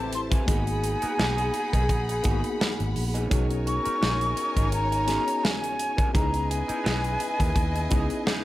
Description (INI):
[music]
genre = lush 1970s-style soul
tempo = 85 BPM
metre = 4/4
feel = swing 54% on 16ths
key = B major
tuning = A4 = 442 Hz
[part]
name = mellow silver concert flute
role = melody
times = 0.0-8.4 s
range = G#5 to C#6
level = -29 LUFS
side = equal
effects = none
[part]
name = warm symphonic string section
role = second line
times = 0.0-8.4 s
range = D#4 to B5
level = -35 LUFS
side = left 1 dB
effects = none
[part]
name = tine electric piano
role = accompaniment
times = 0.0-8.4 s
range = A#3 to B4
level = -33 LUFS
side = left 2 dB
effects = overdrive, fast stereo tremolo
[part]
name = dark horn section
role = stabs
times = 0.0-8.4 s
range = B3 to B4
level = -36 LUFS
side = left 4 dB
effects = none
[part]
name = vintage muted fingered electric bass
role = bass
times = 0.0-8.1 s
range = G#1 to D#2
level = -28 LUFS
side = equal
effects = none
[part]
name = modern studio drum kit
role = drums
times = 0.1-8.4 s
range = hi-hat, kick drum, snare drum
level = -27 LUFS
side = equal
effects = none
[part]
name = electric guitar through a small old amp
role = riff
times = 0.3-8.4 s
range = E3 to B4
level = -38 LUFS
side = right 2 dB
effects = wah
[sound]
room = studio ambience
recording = none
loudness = -23 LUFS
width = side -16 dB against mid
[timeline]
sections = 0.0-8.4 A section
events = none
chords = 0.5 G#m7; 3.3 B69; 6.1 C#m9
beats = | 0.48 1.19 1.89 2.60 | 3.31 4.01 4.72 5.43 | 6.14 6.85 7.56 8.26